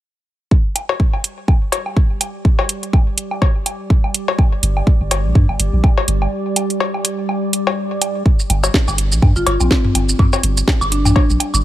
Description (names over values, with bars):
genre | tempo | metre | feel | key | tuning
minimal techno | 124 BPM | 4/4 | swing 57% on 16ths | unclear | A4 = 440 Hz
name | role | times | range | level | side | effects
electronic kick drum | drums | 0.5-11.3 s | none | -14 LUFS | equal | none
warbly tape-like pad | texture | 1.8-11.6 s | G3 to D6 | -26 LUFS | right 1 dB | chorus, built-in reverb, sidechain pumping
house drum kit | drums | 0.8-11.6 s | hi-hat, shaker, snare drum | -18 LUFS | right 2 dB | none
electronic woodblock, cowbell and toms | percussion | 0.8-11.6 s | none | -22 LUFS | left 3 dB | overdrive, digital delay
punchy sub bass | bass | 4.6-11.6 s | G1 to G2 | -17 LUFS | equal | sidechain pumping
marimba with medium mallets | melody | 9.4-11.1 s | C4 to F4 | -21 LUFS | left 1 dB | digital delay
room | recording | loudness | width
little or no reverb | none | -14 LUFS | side -14 dB against mid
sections
0.5-8.3 A section; 8.3-11.6 B section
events
fade-in on ambient pad 0.5-8.3; break 6.3-8.3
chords
0.5 G5